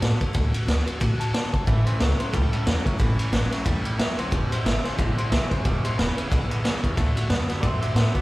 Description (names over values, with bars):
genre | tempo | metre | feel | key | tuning
rockabilly | 181 BPM | 4/4 | swing 58% on 8ths | A major | A4 = 440 Hz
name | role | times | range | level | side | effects
electric guitar through a small old amp | melody | 0.0-8.2 s | F#4 to A5 | -33 LUFS | left 1 dB | slapback echo, tape echo
picked steel-string acoustic guitar | accompaniment | 0.0-8.2 s | E2 to F#4 | -34 LUFS | left 2 dB | slapback echo
upright bass | bass | 0.0-8.2 s | E1 to A2 | -25 LUFS | equal | none
raw garage drum kit | drums | 0.0-8.2 s | kick drum, ride cymbal, snare drum | -24 LUFS | equal | none
twangy electric guitar | riff | 1.7-8.2 s | E2 to C4 | -32 LUFS | right 2 dB | slapback echo
room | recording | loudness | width
light reverb | live gig heard through the venue's PA, recital hall reverb | -21 LUFS | side -19 dB against mid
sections
0.0-8.2 A section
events
none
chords
0.0 D; 1.7 A; 4.3 E; 7.0 D